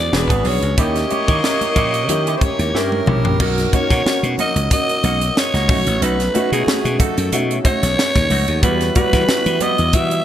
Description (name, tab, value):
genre	polished 1980s jazz-funk pop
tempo	92 BPM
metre	4/4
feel	swing 54% on 16ths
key	B major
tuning	A4 = 440 Hz
part	growling alto saxophone	melody	0.0-10.2 s	G#4 to E5	-20 LUFS	equal	none
part	clear baby grand piano	accompaniment	0.0-10.2 s	G3 to A#4	-23 LUFS	left 1 dB	ensemble chorus
part	slap bass	bass	0.0-10.2 s	E1 to E3	-20 LUFS	equal	none
part	warm horn section	second line	0.1-3.0 s	A#3 to D5	-26 LUFS	left 2 dB	ping-pong delay
part	electric guitar with an envelope filter	riff	0.1-10.2 s	G3 to G#4	-27 LUFS	right 5 dB	wide subtle chorus
part	crisp fusion drum kit	drums	0.1-10.2 s	crash cymbal, hi-hat, kick drum, snare drum, toms	-19 LUFS	equal	none
part	congas	percussion	0.1-10.1 s	none	-32 LUFS	left 3 dB	none
room	moderate plate reverb, RT60 2.9 s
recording	bright 1980s-style digital production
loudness	-14 LUFS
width	side -10 dB against mid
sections	0.0-3.4 A section; 3.4-10.2 B section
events	drum fill 2.7-3.4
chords	0.0 E9; 0.8 D#7b9; 3.4 Bmaj7; 5.7 B7; 8.6 Emadd9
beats	0.12 | 0.78 1.43 2.09 2.74 | 3.40 4.05 4.71 5.36 | 6.02 6.67 7.32 7.98 | 8.63 9.28 9.94